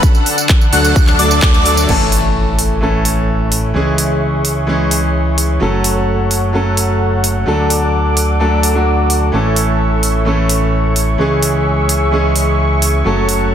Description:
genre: EDM, festival progressive house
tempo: 129 BPM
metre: 4/4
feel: straight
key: unclear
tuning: A4 = 440 Hz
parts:
  - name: lush unison pad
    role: sustained chords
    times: 0.0-13.5 s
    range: D3 to D6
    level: -20 LUFS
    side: left 1 dB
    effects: chorus, sidechain pumping
  - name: electronic kick drum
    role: drums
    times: 0.0-1.5 s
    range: none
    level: -11 LUFS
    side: equal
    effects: none
  - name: pop drum kit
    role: drums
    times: 0.0-13.4 s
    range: crash cymbal, handclaps, hi-hat, tambourine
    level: -18 LUFS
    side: right 1 dB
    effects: none
  - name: plucky unison lead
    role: arpeggios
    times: 0.7-1.9 s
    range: D6 to F#6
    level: -19 LUFS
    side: left 1 dB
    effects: wide subtle chorus, sidechain pumping, digital delay
  - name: supersaw chords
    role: riff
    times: 0.7-1.9 s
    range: F#3 to F#5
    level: -18 LUFS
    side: equal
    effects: sidechain pumping, low-pass filter, digital delay
  - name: fat analog bass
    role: bass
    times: 0.7-13.5 s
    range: F#1 to D2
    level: -16 LUFS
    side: equal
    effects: sidechain pumping
  - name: bright concert grand piano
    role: accompaniment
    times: 1.9-13.5 s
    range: E3 to A4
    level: -16 LUFS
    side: equal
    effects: sidechain pumping, digital delay
  - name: impact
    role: sound effects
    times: 1.9-3.8 s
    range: none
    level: -21 LUFS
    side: equal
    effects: none
room: moderate digital room reverb, RT60 1.0 s, digital ambience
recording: dense, heavily limited modern master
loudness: -11 LUFS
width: side -9 dB against mid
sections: 0.0-1.9 A section; 1.9-13.5 B section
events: drop 0.0-1.9; band accent 1.4; impact 1.9-3.8; filter sweep on analog synth pad 1.9-13.5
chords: 0.0 D; 1.9 A; 3.8 C#m; 5.6 F#m; 7.5 D; 9.3 A; 11.2 C#m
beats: | 0.03 0.49 0.96 1.43 | 1.89 2.36 2.82 3.29 | 3.75 4.22 4.68 5.15 | 5.61 6.08 6.54 7.01 | 7.47 7.94 8.40 8.87 | 9.33 9.80 10.26 10.73 | 11.19 11.66 12.12 12.59 | 13.05 13.52

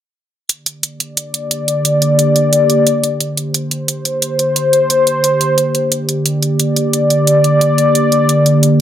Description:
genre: dark technical drum and bass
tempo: 177 BPM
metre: 4/4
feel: straight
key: G minor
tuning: A4 = 441 Hz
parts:
  - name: sweeping resonant pad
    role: sustained chords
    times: 0.5-8.8 s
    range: D3 to G5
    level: -12 LUFS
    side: equal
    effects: chorus
  - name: electronic hi-hat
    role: drums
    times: 0.5-8.7 s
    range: none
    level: -16 LUFS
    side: right 2 dB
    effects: overdrive
room: moderate digital room reverb, RT60 1.2 s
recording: none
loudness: -12 LUFS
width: side -10 dB against mid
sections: 0.5-8.8 A section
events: filter sweep on analog synth pad 0.5-8.8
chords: 0.5 Gm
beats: | 0.49 0.83 1.17 1.51 | 1.85 2.19 2.53 2.87 | 3.21 3.54 3.88 4.22 | 4.56 4.90 5.24 5.58 | 5.92 6.26 6.59 6.93 | 7.27 7.61 7.95 8.29 | 8.63

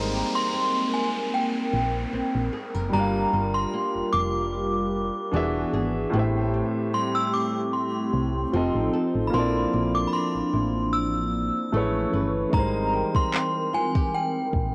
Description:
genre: contemporary R&B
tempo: 75 BPM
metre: 4/4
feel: swing 54% on 16ths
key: unclear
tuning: A4 = 440 Hz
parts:
  - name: synth chime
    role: melody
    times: 0.0-14.7 s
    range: G5 to E6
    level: -30 LUFS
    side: equal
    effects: ensemble chorus, cassette tape
  - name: warm concert grand piano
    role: accompaniment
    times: 0.0-14.7 s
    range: A2 to F5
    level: -32 LUFS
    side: equal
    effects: cassette tape
  - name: hollow soft pad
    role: sustained chords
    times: 0.0-14.7 s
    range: E3 to Bb4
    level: -32 LUFS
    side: equal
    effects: chorus, cassette tape
  - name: flamenco guitar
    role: arpeggios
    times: 0.0-14.7 s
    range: A2 to B4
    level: -36 LUFS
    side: equal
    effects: cassette tape
  - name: solid FM bass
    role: bass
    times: 0.0-14.7 s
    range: E1 to C2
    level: -31 LUFS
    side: equal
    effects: none
  - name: downlifter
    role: sound effects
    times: 0.0-6.1 s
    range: none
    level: -40 LUFS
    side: equal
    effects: none
  - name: smooth R&B drum kit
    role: drums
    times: 12.5-14.7 s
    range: handclaps, kick drum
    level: -26 LUFS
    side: equal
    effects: cassette tape
room: light reverb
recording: home recording on cassette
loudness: -25 LUFS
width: mono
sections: 0.0-14.7 A section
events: none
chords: 0.0 Abmaj9; 2.9 Gm7; 5.3 E7; 6.1 Am7; 8.5 F7; 9.3 Bbmaj9#11; 11.7 Amaj9; 12.5 Abmaj9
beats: 0.53 1.33 2.13 | 2.93 3.73 4.53 5.33 | 6.13 6.93 7.73 8.53 | 9.33 10.13 10.93 11.73 | 12.53 13.33 14.13

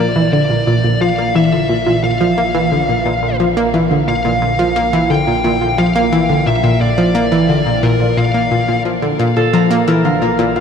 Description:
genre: ambient, sequencer-driven space music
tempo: 88 BPM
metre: 4/4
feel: straight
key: Bb lydian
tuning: A4 = 441 Hz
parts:
  - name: fuzz lead guitar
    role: melody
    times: 0.0-8.8 s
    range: Bb4 to G5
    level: -18 LUFS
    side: left 1 dB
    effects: distortion, shimmer reverb, ping-pong delay
  - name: analog pluck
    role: riff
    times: 0.0-10.6 s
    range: Bb2 to Bb3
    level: -13 LUFS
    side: equal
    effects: chorus, shimmer reverb, ping-pong delay
  - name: round analog bass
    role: bass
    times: 0.0-10.6 s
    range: Bb1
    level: -31 LUFS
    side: equal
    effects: none
  - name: Celtic harp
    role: arpeggios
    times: 9.4-10.6 s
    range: A4 to Bb5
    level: -17 LUFS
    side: right 2 dB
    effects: auto-pan, shimmer reverb, ping-pong delay
room: wet huge ambient reverb, RT60 8.3 s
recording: dark, warm production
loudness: -12 LUFS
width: side -7 dB against mid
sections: 0.0-10.6 A section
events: fade-in on analog synth bass 0.0-10.6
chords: 0.0 Bb5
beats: 0.33 | 1.01 1.70 2.38 3.06 | 3.74 4.42 5.11 5.79 | 6.47 7.15 7.83 8.51 | 9.20 9.88 10.56

